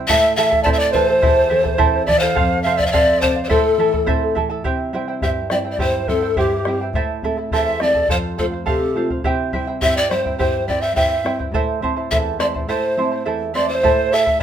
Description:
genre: andean folk, Andean ensemble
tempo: 105 BPM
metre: 2/4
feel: straight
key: A minor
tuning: A4 = 440 Hz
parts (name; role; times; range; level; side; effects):
- charango; accompaniment; 0.0-14.4 s; E4 to A5; -22 LUFS; right 5 dB; none
- nylon-string guitar; accompaniment; 0.0-14.4 s; E2 to F4; -26 LUFS; equal; none
- breathy polished pan flute; melody; 0.1-14.4 s; G4 to E5; -18 LUFS; left 2 dB; none
- hollow quena; second line; 0.1-14.4 s; G4 to A5; -22 LUFS; right 3 dB; none
- bombo; percussion; 0.1-14.4 s; none; -24 LUFS; left 1 dB; none
room: moderate studio reverb, RT60 0.6 s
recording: minimal, uncompressed stereo recording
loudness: -16 LUFS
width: side -9 dB against mid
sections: 0.0-4.7 A section; 4.7-13.8 B section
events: none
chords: 0.1 Am; 2.4 F; 3.5 Am; 4.7 C; 6.9 Am; 8.1 F; 9.2 C; 11.5 Am

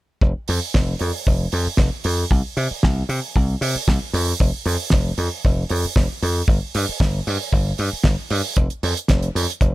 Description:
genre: nu-disco, nu disco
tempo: 115 BPM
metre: 4/4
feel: swing 55% on 16ths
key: unclear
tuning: A4 = 441 Hz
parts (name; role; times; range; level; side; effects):
- dry thumbed slap bass; bass; 0.2-9.7 s; F1 to C3; -21 LUFS; equal; tube saturation
- kick drum; drums; 0.2-9.7 s; none; -18 LUFS; equal; none
- damped 70s drum kit; drums; 0.5-9.7 s; hi-hat, snare drum; -25 LUFS; right 3 dB; none
room: little or no reverb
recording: none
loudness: -18 LUFS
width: side -17 dB against mid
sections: 0.2-9.7 A section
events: none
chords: none

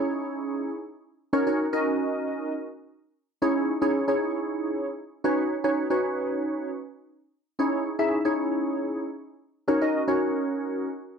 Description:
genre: pop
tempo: 115 BPM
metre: 4/4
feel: straight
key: C# dorian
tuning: A4 = 440 Hz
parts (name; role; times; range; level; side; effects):
- glassy digital keys; solo; 0.0-10.9 s; C#4 to E5; -24 LUFS; equal; chorus
room: light reverb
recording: dry, close 1970s-style studio recording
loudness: -24 LUFS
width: side -6 dB against mid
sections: 0.0-11.2 A section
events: none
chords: 0.0 C#madd9; 1.3 D#m7; 3.4 C#madd9; 5.2 Badd9; 7.6 C#madd9; 9.7 D#m7

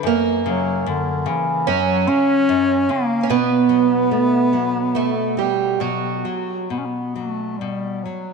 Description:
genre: fado-style ballad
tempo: 66-75 BPM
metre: 4/4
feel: rubato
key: unclear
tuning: A4 = 438 Hz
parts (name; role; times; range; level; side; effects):
- nylon-string guitar; accompaniment; 0.0-8.3 s; F#2 to F#4; -25 LUFS; left 10 dB; none
- fingerpicked twelve-string acoustic guitar; second line; 0.1-6.7 s; F#3 to C#4; -20 LUFS; right 11 dB; none
- warm bass clarinet; melody; 0.5-8.3 s; D3 to C#4; -20 LUFS; left 1 dB; none
room: moderate plate reverb, RT60 3.3 s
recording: 1960s-style stereo with parts hard left and right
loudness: -17 LUFS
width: side -4 dB against mid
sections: 0.0-6.7 A section; 6.7-8.3 B section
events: none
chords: 0.1 F#; 3.3 B5

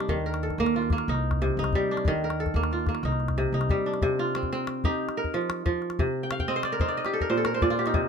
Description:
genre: west african traditional, West African string and xylophone music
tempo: 122 BPM (dotted quarters)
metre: 12/8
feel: straight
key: C dorian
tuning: A4 = 441 Hz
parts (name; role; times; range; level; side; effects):
- kora; arpeggios; 0.0-8.1 s; Bb2 to G5; -26 LUFS; right 1 dB; none
- calabash; percussion; 0.0-8.0 s; none; -29 LUFS; left 2 dB; none
- upright bass; bass; 0.1-3.7 s; C2 to Eb2; -29 LUFS; left 1 dB; none
room: little or no reverb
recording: close, detailed microphones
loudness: -24 LUFS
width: side -6 dB against mid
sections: 0.0-4.0 A section; 4.0-8.1 B section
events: kora fill 6.2-7.9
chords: 0.1 Eb5; 1.1 Cm; 2.1 Eb5; 3.0 Cm; 5.0 Fsus24; 6.0 Cm; 7.0 N.C.

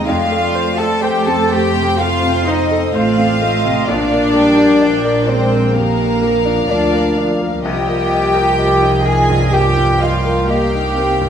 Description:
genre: cinematic, emotional film score for orchestra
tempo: 63 BPM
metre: 4/4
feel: rubato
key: C minor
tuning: A4 = 440 Hz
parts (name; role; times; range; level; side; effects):
- warm symphonic violin section; melody; 0.0-11.3 s; C5 to G5; -26 LUFS; left 4 dB; none
- warm studio violin section; second line; 0.0-11.3 s; Bb4 to A5; -20 LUFS; left 1 dB; none
- bright concert grand piano; accompaniment; 0.0-11.3 s; Bb1 to Eb5; -19 LUFS; left 3 dB; none
- dark symphonic viola section; accompaniment; 0.0-11.3 s; F3 to C4; -22 LUFS; right 2 dB; none
- dark symphonic double bass section; bass; 0.0-11.3 s; A1 to F2; -20 LUFS; right 2 dB; none
- rich symphonic cello section; bass; 0.0-11.3 s; Bb3 to A4; -17 LUFS; right 1 dB; none
room: wet scoring stage reverb, RT60 1.9 s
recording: minimal, uncompressed stereo recording, vinyl crackle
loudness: -12 LUFS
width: side -8 dB against mid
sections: 0.0-11.3 A section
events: none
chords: 0.1 F; 3.9 Bb; 7.6 Cm7

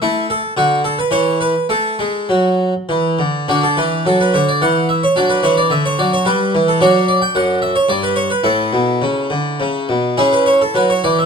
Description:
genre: classical, baroque-style suite movement for harpsichord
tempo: 98-113 BPM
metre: 3/4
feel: rubato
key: A major, D major from 3.5 s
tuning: A4 = 438 Hz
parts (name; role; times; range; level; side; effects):
- harpsichord; solo; 0.0-11.3 s; F#2 to G5; -13 LUFS; equal; none
room: light reverb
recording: dark, warm production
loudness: -13 LUFS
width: side -6 dB against mid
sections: 0.0-3.5 A section; 3.5-11.3 A section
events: none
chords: 0.0 N.C.; 1.7 A5; 3.5 D; 4.6 N.C.; 5.2 D; 6.3 G; 6.8 D/F#; 7.9 N.C.; 8.4 A; 10.2 C#m

